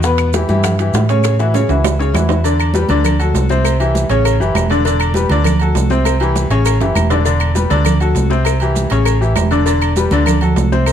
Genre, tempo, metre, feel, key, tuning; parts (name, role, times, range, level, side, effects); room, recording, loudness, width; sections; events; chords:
latin, salsa; 200 BPM; 4/4; straight; D major; A4 = 438 Hz
bright upright piano; accompaniment; 0.0-10.9 s; B2 to D5; -17 LUFS; left 3 dB
hollow-body short-scale fingered electric bass; bass; 0.0-10.9 s; E1 to A2; -15 LUFS; equal
bongos and cowbell; percussion; 0.0-10.9 s; -25 LUFS; left 6 dB
congas; percussion; 0.0-10.9 s; -22 LUFS; right 3 dB
maracas; percussion; 0.0-10.9 s; -30 LUFS; right 12 dB
claves; percussion; 0.2-10.9 s; -28 LUFS; left 9 dB
timbales and agogo bells; percussion; 0.2-10.9 s; -23 LUFS; right 9 dB
little or no reverb; close, detailed microphones; -12 LUFS; side -9 dB against mid
0.0-2.4 A section; 2.4-10.9 B section
drum fill 1.2-2.4, 6.8-7.3
0.0 Em; 1.2 A6; 2.4 Em7; 3.0 D; 3.6 C; 4.2 A7; 4.9 Em7; 5.5 D; 6.1 C; 6.7 A7; 7.3 Em7; 7.9 D; 8.5 C; 9.1 A7; 9.7 Em7; 10.3 D